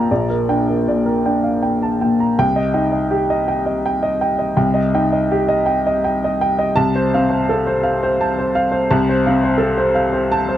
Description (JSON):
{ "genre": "neoclassical minimalist piano", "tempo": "55 BPM (dotted quarters)", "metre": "6/8", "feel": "rubato", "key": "C dorian", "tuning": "A4 = 440 Hz", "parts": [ { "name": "clear upright piano", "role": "solo", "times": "0.0-10.6 s", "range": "Bb1 to Bb5", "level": "-15 LUFS", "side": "equal", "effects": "none" } ], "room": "little or no reverb", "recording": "dry, close 1970s-style studio recording", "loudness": "-15 LUFS", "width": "side -12 dB against mid", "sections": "0.0-2.4 A section; 2.4-10.6 B section", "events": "none", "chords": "0.0 Gm/Bb; 2.4 Cm; 6.7 F/C" }